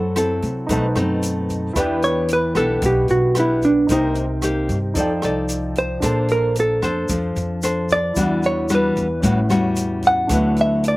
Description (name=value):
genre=bossa nova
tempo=112 BPM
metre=4/4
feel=straight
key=unclear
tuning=A4 = 439 Hz
part: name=hollow-body jazz guitar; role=melody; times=0.0-11.0 s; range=D4 to F#5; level=-19 LUFS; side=right 1 dB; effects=none
part: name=nylon-string guitar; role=accompaniment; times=0.0-11.0 s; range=A2 to D5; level=-22 LUFS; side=left 2 dB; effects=none
part: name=warm grand piano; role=accompaniment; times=0.0-11.0 s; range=C#4 to A5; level=-28 LUFS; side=right 2 dB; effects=slapback echo
part: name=upright bass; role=bass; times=0.0-11.0 s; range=A1 to C3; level=-24 LUFS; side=equal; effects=none
part: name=open jazz drum kit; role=drums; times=0.2-11.0 s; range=hi-hat, kick drum, rim click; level=-29 LUFS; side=equal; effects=none
part: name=egg shaker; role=percussion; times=0.2-11.0 s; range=none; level=-33 LUFS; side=left 2 dB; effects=none
room=little or no reverb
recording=recorded outdoors, with no room sound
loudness=-17 LUFS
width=side -19 dB against mid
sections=0.0-11.0 A section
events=hollow-body jazz guitar solo 0.0-11.0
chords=0.0 F#m7b5; 0.7 B7b9; 1.8 Em7; 3.9 Cm7; 5.0 F13; 6.0 Bbmaj9; 8.2 Em9; 9.2 A13; 10.3 D69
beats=0.16 0.69 1.23 | 1.76 2.29 2.83 3.36 | 3.89 4.43 4.96 5.50 | 6.03 6.57 7.10 7.63 | 8.17 8.70 9.24 9.77 | 10.31 10.84